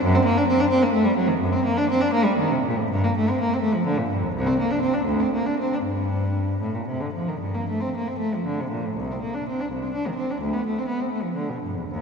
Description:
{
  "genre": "classical, baroque-style suite movement for unaccompanied cello",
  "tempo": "73-88 BPM (dotted quarters)",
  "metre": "12/8",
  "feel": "rubato",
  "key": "G minor",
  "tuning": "A4 = 439 Hz",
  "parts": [
    { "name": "rich cello", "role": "solo", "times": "0.0-12.0 s", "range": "C2 to D4", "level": "-21 LUFS", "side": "equal", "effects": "none" }
  ],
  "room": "wet church reverb, RT60 3.1 s",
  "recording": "minimal, uncompressed stereo recording",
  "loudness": "-21 LUFS",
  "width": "side -5 dB against mid",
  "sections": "0.0-9.0 A section; 9.0-12.0 A section",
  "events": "none",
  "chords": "none",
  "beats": "| 0.01 0.70 1.42 2.14 | 2.90 3.62 4.34 5.08 | 5.85 6.62 7.40 8.19 | 8.97 9.71 10.42 11.14 | 11.92"
}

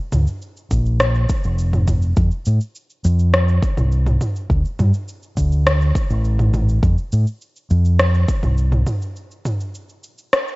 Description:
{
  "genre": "sunset chillout",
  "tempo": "103 BPM",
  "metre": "4/4",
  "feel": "straight",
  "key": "F major",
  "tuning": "A4 = 436 Hz",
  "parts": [
    { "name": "fingered electric bass", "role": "bass", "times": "0.1-8.8 s", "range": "F1 to A2", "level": "-16 LUFS", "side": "equal", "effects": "tube saturation" },
    { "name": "deep house drum kit", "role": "drums", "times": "0.1-10.6 s", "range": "rim click, shaker, toms", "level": "-21 LUFS", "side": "equal", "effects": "small room reverb" },
    { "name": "electronic kick drum", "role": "drums", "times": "0.7-8.4 s", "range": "none", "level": "-20 LUFS", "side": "equal", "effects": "small room reverb" }
  ],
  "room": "little or no reverb",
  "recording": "worn, warbling old tape, cassette tape, warbly pitch drift, nothing above 7.8 kHz",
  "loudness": "-16 LUFS",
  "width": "side -22 dB against mid",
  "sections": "0.0-10.6 A section",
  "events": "break 9.2-10.6",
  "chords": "none",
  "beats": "0.42 1.00 1.59 | 2.17 2.75 3.33 3.92 | 4.50 5.08 5.67 6.25 | 6.83 7.41 8.00 8.58 | 9.16 9.74 10.32"
}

